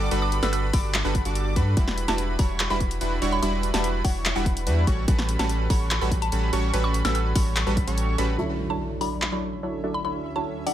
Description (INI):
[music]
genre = future bass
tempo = 145 BPM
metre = 4/4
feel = half-time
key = D major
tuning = A4 = 444 Hz
[part]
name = airy dreamy lead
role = arpeggios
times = 0.0-8.4 s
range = B5 to D6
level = -34 LUFS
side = equal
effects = chorus, sidechain pumping, tape echo
[part]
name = supersaw stab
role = riff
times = 0.0-10.7 s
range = F#3 to D5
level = -28 LUFS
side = right 2 dB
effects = sidechain pumping, low-pass filter, tape echo
[part]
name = saturated sub bass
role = bass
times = 0.0-8.4 s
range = E1 to G2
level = -26 LUFS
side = equal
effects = sidechain pumping
[part]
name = big-room dance drum kit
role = drums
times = 0.1-10.7 s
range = handclaps, hi-hat, snare drum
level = -29 LUFS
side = left 1 dB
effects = none
[part]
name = mallet-like synth pluck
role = melody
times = 0.2-10.7 s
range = F#5 to E6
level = -32 LUFS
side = equal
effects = chorus, phaser, sidechain pumping, tape echo
[part]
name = electronic kick drum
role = drums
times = 0.7-7.9 s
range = none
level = -23 LUFS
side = equal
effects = none
[part]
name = felt-muted upright piano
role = accompaniment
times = 8.4-10.7 s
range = D3 to E4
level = -34 LUFS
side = right 1 dB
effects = sidechain pumping, tape echo
[part]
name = shimmering ambient pad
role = sustained chords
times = 9.5-10.7 s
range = D2 to E5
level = -40 LUFS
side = equal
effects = chorus, built-in reverb, sidechain pumping
[part]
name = impact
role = sound effects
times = 8.4-10.0 s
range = none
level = -36 LUFS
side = equal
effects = none
[sound]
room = little or no reverb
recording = none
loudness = -22 LUFS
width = side -11 dB against mid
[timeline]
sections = 0.0-8.4 A section; 8.4-10.7 B section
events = drop 0.0-8.4; kick drops out 8.0-8.4; impact 8.4-10.0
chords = 0.0 Gmaj9; 1.8 Em9; 4.9 A13; 8.4 Dmaj9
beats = | 0.11 0.53 0.94 1.36 | 1.77 2.18 2.60 3.01 | 3.42 3.84 4.25 4.67 | 5.08 5.49 5.91 6.32 | 6.74 7.15 7.56 7.98 | 8.39 8.80 9.22 9.63 | 10.04 10.46